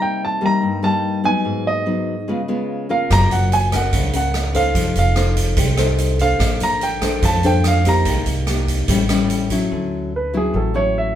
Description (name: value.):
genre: bossa nova.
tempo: 145 BPM.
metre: 4/4.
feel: straight.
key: unclear.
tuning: A4 = 441 Hz.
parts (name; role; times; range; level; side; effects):
warm grand piano; melody; 0.0-11.2 s; G#4 to Bb5; -21 LUFS; right 2 dB; none.
nylon-string guitar; accompaniment; 0.0-11.2 s; G2 to C5; -21 LUFS; left 3 dB; none.
upright bass; bass; 3.1-11.2 s; F1 to F2; -20 LUFS; right 1 dB; none.
swinging big-band drum kit; drums; 3.1-9.6 s; hi-hat, kick drum, rim click; -22 LUFS; right 1 dB; none.
room: moderate studio reverb, RT60 0.9 s.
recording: band playing live in one room.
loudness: -16 LUFS.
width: side -10 dB against mid.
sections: 0.0-9.7 A section; 9.7-11.2 B section.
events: grand piano solo 9.7-11.2.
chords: 0.0 Cm7; 1.4 Abm7; 2.3 Db7; 3.1 Gbmaj7; 4.8 F7; 6.4 Bbmaj9; 8.1 Cm7; 8.9 A7; 9.7 Dmaj9.